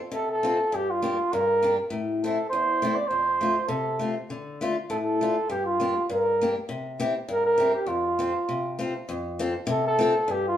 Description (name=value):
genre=alpine folk, alpine dance band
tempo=100 BPM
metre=2/4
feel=straight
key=F major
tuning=A4 = 439 Hz
part: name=mellow flugelhorn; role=melody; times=0.1-10.6 s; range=F4 to D5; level=-24 LUFS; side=right 1 dB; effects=none
part: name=picked old ladder-braced acoustic guitar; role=accompaniment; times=0.1-10.6 s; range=E2 to A4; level=-28 LUFS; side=left 3 dB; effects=none
room=wet large studio reverb, RT60 0.9 s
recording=band playing live in one room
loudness=-23 LUFS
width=side -10 dB against mid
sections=0.0-9.1 A section; 9.1-10.6 A section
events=none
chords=0.0 F; 0.7 Gm; 1.9 Am; 3.1 F; 4.3 Dm; 5.5 Gm; 6.7 C; 7.9 F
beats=0.13 | 0.72 1.32 | 1.92 2.51 | 3.10 3.70 | 4.30 4.90 | 5.50 6.09 | 6.69 7.28 | 7.88 8.47 | 9.08 9.68 | 10.28